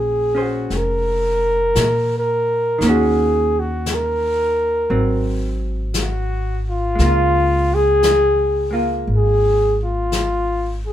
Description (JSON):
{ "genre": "jazz ballad", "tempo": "57 BPM", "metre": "4/4", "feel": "swing 67% on 8ths", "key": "unclear", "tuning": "A4 = 441 Hz", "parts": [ { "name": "mellow flugelhorn", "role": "melody", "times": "0.0-10.9 s", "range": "F4 to Bb4", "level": "-18 LUFS", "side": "equal", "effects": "none" }, { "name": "vintage hollow-body jazz guitar", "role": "accompaniment", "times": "0.0-10.9 s", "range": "Eb3 to C5", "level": "-24 LUFS", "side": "right 1 dB", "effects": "none" }, { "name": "upright bass", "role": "bass", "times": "0.0-10.9 s", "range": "F1 to Bb2", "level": "-21 LUFS", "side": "equal", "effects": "none" }, { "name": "jazz brush drum kit", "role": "drums", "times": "0.7-10.9 s", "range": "brushed snare drum, hi-hat, snare drum", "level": "-27 LUFS", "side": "left 4 dB", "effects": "none" } ], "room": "moderate studio reverb, RT60 0.5 s", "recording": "band playing live in one room", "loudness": "-16 LUFS", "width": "side -11 dB against mid", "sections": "0.0-10.9 A section", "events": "flugelhorn solo 0.0-10.9", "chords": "0.0 Bbm9; 2.8 Ebm7; 4.9 Ab7; 7.0 Db6" }